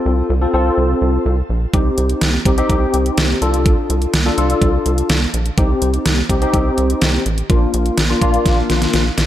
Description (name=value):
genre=synth-pop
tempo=125 BPM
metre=4/4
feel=straight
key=C dorian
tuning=A4 = 439 Hz
part: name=bright tine electric piano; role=accompaniment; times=0.0-9.0 s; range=Bb3 to A4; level=-18 LUFS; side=left 2 dB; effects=ensemble chorus, shimmer reverb
part: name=rubbery square bass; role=bass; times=0.1-9.3 s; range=A1 to C2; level=-18 LUFS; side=equal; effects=none
part: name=pop drum kit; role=drums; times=1.7-9.3 s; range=hi-hat, kick drum, snare drum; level=-17 LUFS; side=right 1 dB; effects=overdrive
room=light reverb, digital ambience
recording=none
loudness=-14 LUFS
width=side -12 dB against mid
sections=0.0-9.3 A section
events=drum fill 8.5-9.3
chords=0.0 F/C; 1.7 Cm; 3.4 Dm7/C; 5.6 Cm; 7.5 Bb